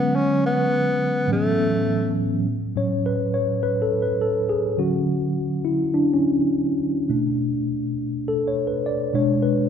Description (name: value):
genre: soul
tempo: 104 BPM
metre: 4/4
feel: swing 58% on 16ths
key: A major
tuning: A4 = 438 Hz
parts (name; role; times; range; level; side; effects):
- breathy tenor saxophone; melody; 0.0-2.1 s; A3 to C#4; -22 LUFS; equal; none
- mellow tine electric piano; accompaniment; 0.0-9.7 s; A2 to D5; -20 LUFS; left 1 dB; medium stereo tremolo
room: wet scoring stage reverb, RT60 1.6 s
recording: dark, warm production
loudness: -20 LUFS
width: side -8 dB against mid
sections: 0.0-2.5 A section; 2.5-9.7 B section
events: tine electric piano solo 2.5-9.7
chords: 0.0 Bm69/D; 1.3 A6; 4.8 Dmaj7; 7.1 Bm7; 9.1 Bm69